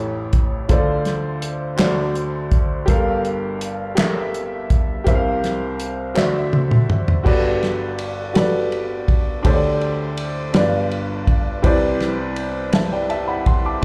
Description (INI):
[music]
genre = slow gospel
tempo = 55 BPM (dotted quarters)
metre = 6/8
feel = straight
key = G major from 7.3 s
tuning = A4 = 440 Hz
[part]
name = warm upright piano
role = accompaniment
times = 0.0-13.8 s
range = G1 to D6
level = -23 LUFS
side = equal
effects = slapback echo
[part]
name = warm soul drum kit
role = drums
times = 0.3-13.8 s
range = crash cymbal, hi-hat, kick drum, ride cymbal, snare drum, toms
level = -22 LUFS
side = equal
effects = none
[part]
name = group handclap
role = percussion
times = 1.8-6.5 s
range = none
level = -32 LUFS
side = equal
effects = slapback echo
[sound]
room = light reverb, small room reverb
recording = live gig heard through the venue's PA, club reverb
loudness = -20 LUFS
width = mono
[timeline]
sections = 0.0-7.3 A section; 7.3-13.8 A section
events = drum fill 6.2-7.3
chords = 0.0 A7; 0.7 Dm7; 1.8 D7; 2.9 Gm9; 5.1 C7sus4; 6.2 D9; 7.3 Gmaj9; 9.5 D7sus4; 10.5 G7; 11.6 Cmaj9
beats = | 0.69 1.79 | 2.88 3.98 | 5.07 6.17 | 7.26 8.36 | 9.45 10.55 | 11.64 12.74 | 13.83